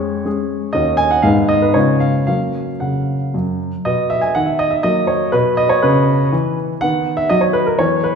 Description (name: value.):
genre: classical-period piano sonatina.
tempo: 113-124 BPM.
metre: 3/4.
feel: rubato.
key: F# major, B major from 3.9 s.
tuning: A4 = 436 Hz.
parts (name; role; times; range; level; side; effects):
warm baby grand piano; solo; 0.0-8.2 s; D#2 to G#5; -14 LUFS; equal; none.
room: wet recital hall reverb, RT60 1.8 s.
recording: heard from further back in the room.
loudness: -14 LUFS.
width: side -6 dB against mid.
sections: 0.0-3.9 A section; 3.9-8.2 B section.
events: none.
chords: 0.0 C#/E#; 0.8 D#m7; 1.3 G#m; 1.8 C#7; 2.3 F#; 3.9 B; 4.9 F#; 5.3 Badd9; 6.8 B/D#.